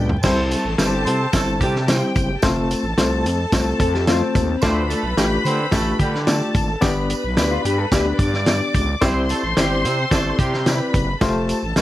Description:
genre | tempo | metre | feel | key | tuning
uptempo 1960s-style soul | 109 BPM | 4/4 | straight | C major | A4 = 441 Hz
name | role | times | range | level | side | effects
warm studio string section | second line | 0.0-11.8 s | D4 to D6 | -26 LUFS | left 1 dB | none
barky reed electric piano | accompaniment | 0.0-11.8 s | G3 to D5 | -23 LUFS | left 2 dB | overdrive, fast tremolo
mellow electric guitar | riff | 0.0-0.1, 3.8-8.8 s | C4 to A4 | -25 LUFS | left 4 dB | none
growling FM bass | bass | 0.0-11.8 s | F1 to D3 | -23 LUFS | equal | none
warm soul drum kit | drums | 0.1-11.8 s | crash cymbal, hi-hat, kick drum, snare drum, toms | -21 LUFS | equal | none
mellow horn section | second line | 0.2-10.9 s | G3 to C5 | -26 LUFS | right 3 dB | none
tambourine | percussion | 0.2-11.8 s | none | -35 LUFS | right 6 dB | none
room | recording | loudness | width
light reverb, studio ambience | vinyl crackle | -17 LUFS | side -14 dB against mid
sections
0.2-11.8 A section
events
drum fill 0.0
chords
0.2 C; 2.4 F; 4.6 Dm; 6.8 G; 9.0 Cadd9; 11.2 Fadd9

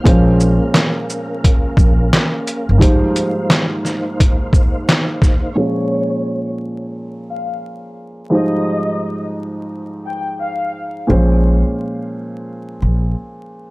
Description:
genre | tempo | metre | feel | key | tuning
hip hop, boom-bap hip-hop | 87 BPM | 4/4 | swing 62% on 16ths | Bb dorian | A4 = 440 Hz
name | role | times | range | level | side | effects
dark baby grand piano | accompaniment | 0.0-13.7 s | Ab2 to Db5 | -20 LUFS | right 1 dB | cassette tape, high-pass filter, low-pass filter
mellow tonewheel organ | sustained chords | 0.0-5.5 s | Bb3 to F5 | -24 LUFS | equal | chorus vibrato, fast rotary speaker, high-pass filter, low-pass filter
upright bass | bass | 0.1-2.8, 11.1-13.1 s | G1 to Bb1 | -14 LUFS | equal | tube saturation
trip hop sampler-style drum kit | drums | 0.1-5.4 s | handclaps, hi-hat, kick drum, shaker, snare drum | -13 LUFS | equal | overdrive
rich studio violin section | melody | 5.6-10.7 s | Db5 to G5 | -25 LUFS | left 2 dB | high-pass filter, low-pass filter, analog delay
room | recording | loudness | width
small room ambience | dry, gritty hardware recording, vinyl crackle | -14 LUFS | side -23 dB against mid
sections
0.0-5.6 A section; 5.6-13.7 B section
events
none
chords
0.1 Bbm7; 2.8 Fm7/Ab; 5.6 Bbm7; 8.3 Fm7/Ab; 11.1 Bbm7

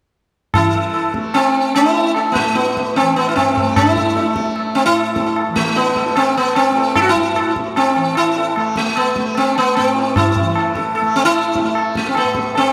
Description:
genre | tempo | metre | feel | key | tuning
indian classical, Hindustani | 150 BPM | 4/4 | straight | unclear | A4 = 440 Hz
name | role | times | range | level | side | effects
tanpura | drone | 0.5-12.7 s | A2 to A3 | -28 LUFS | equal | none
tabla | percussion | 0.5-12.7 s | none | -22 LUFS | equal | none
sitar | melody | 0.6-12.7 s | A3 to A4 | -18 LUFS | equal | delay
room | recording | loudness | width
wet plate reverb, RT60 2.9 s | dreamy mix soaked in reverb | -16 LUFS | mono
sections
0.5-12.7 A section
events
none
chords
none

